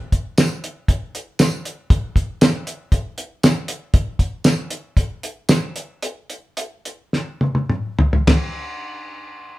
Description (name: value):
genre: rock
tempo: 100-118 BPM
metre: 4/4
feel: straight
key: none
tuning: none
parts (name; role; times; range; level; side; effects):
- cloth-damped thuddy drum kit; drums; 0.1-8.4 s; hi-hat, kick drum, ride cymbal, snare drum, tambourine, toms; -17 LUFS; equal; none
room: moderate studio reverb, RT60 0.6 s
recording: band playing live in one room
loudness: -18 LUFS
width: side -17 dB against mid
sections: 0.0-8.3 A section; 8.3-9.6 B section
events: slowing down 3.9-8.3; drum fill 7.1-8.3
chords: none